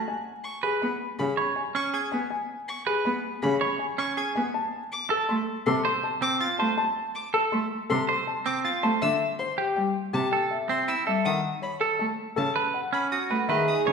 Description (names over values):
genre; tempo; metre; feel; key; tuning
classical, minimalist pattern music; 161 BPM; 6/4; straight; unclear; A4 = 440 Hz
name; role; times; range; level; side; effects
warm baby grand piano; melody; 0.0-13.9 s; G4 to C6; -29 LUFS; left 5 dB; none
clear cello; accompaniment; 0.0-13.9 s; C3 to B3; -30 LUFS; equal; none
rich violin; arpeggios; 0.4-13.8 s; D#5 to A6; -34 LUFS; left 3 dB; none
semi-hollow electric guitar; arpeggios; 0.6-13.9 s; C4 to C#5; -28 LUFS; right 5 dB; none
wooden-headed alto flute; second line; 13.5-13.9 s; G#4; -26 LUFS; right 6 dB; none
warm studio string section; sustained chords; 13.5-13.9 s; D#4 to G#4; -31 LUFS; left 2 dB; none
room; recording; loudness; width
wet recital hall reverb, RT60 1.5 s; recorded in a church or concert hall; -24 LUFS; side -5 dB against mid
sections
0.0-13.5 A section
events
none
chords
0.1 C#5; 4.5 F (rootless); 9.0 C6; 11.3 B7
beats
| 0.07 0.45 0.82 1.19 1.56 1.94 | 2.31 2.68 3.05 3.43 3.80 4.17 | 4.54 4.92 5.29 5.66 6.04 6.41 | 6.78 7.15 7.53 7.90 8.27 8.64 | 9.02 9.39 9.76 10.13 10.51 10.88 | 11.25 11.63 12.00 12.37 12.74 13.12 | 13.49 13.86